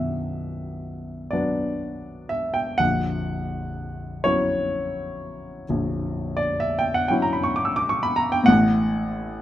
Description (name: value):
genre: classical, romantic nocturne for solo piano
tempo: 38-44 BPM (dotted quarters)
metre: 12/8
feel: rubato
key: unclear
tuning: A4 = 440 Hz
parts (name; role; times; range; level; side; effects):
- warm baby grand piano; solo; 0.0-9.4 s; A#0 to E6; -21 LUFS; equal; none
room: light reverb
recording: close, detailed microphones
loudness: -21 LUFS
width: side -13 dB against mid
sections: 0.0-9.4 A section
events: none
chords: 0.0 Bm; 2.8 F#7/A#; 8.5 B7(no3)/A (rootless)